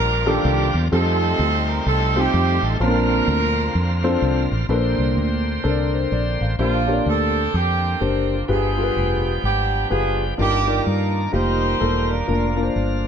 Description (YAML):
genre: gospel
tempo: 127 BPM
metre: 4/4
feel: swing 62% on 8ths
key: Bb major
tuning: A4 = 440 Hz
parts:
  - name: warm horn section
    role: melody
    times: 0.0-13.0 s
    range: Bb3 to C5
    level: -23 LUFS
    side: right 3 dB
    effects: none
  - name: bright tonewheel organ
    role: sustained chords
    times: 0.0-13.1 s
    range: C3 to G5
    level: -28 LUFS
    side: right 2 dB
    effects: fast rotary speaker, overdrive
  - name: fingered electric bass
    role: bass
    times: 0.0-13.1 s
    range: E1 to G2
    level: -22 LUFS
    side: equal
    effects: none
  - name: warm concert grand piano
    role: accompaniment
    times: 0.3-13.1 s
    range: G2 to A5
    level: -22 LUFS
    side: left 2 dB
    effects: none
room: moderate large studio reverb, RT60 1.0 s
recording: none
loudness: -18 LUFS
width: side -7 dB against mid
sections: 0.0-4.7 A section; 4.7-6.6 B section; 6.6-13.1 C section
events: none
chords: 0.0 Ebmaj9; 0.9 F9; 2.8 Bbmaj9; 6.6 Bb69; 8.5 G7b9; 10.4 Ebmaj9/G; 11.3 F9sus4; 12.3 Bb/F